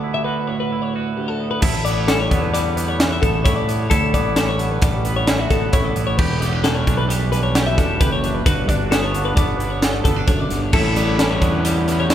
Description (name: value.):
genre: math rock and midwest emo.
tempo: 132 BPM.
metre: 5/4.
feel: straight.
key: unclear.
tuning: A4 = 440 Hz.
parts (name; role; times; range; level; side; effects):
twangy electric guitar; accompaniment; 0.0-12.1 s; D2 to A4; -24 LUFS; right 4 dB; none.
twelve-string electric guitar; arpeggios; 0.0-12.1 s; G4 to E5; -23 LUFS; left 4 dB; none.
fuzz fingered electric bass; bass; 1.6-12.1 s; E1 to A2; -22 LUFS; equal; overdrive.
crisp fusion drum kit; drums; 1.6-12.1 s; crash cymbal, hi-hat, kick drum, snare drum; -20 LUFS; equal; none.
crunchy overdriven guitar; riff; 10.7-12.1 s; A2 to E4; -22 LUFS; equal; none.
room: wet cathedral reverb, RT60 5.0 s.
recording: recorded in a church or concert hall.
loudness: -16 LUFS.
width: side -10 dB against mid.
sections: 0.0-1.6 A section; 1.6-12.1 B section.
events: break 0.0-1.6.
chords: 0.0 D69; 1.6 A9sus4; 6.2 Em7; 8.5 Gmaj7; 10.7 A9sus4.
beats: 0.26 0.71 1.17 | 1.63 2.09 2.55 3.00 3.46 | 3.91 4.37 4.82 5.28 5.73 | 6.19 6.64 7.10 7.55 8.01 | 8.46 8.92 9.37 9.83 10.28 | 10.73 11.19 11.64 12.10.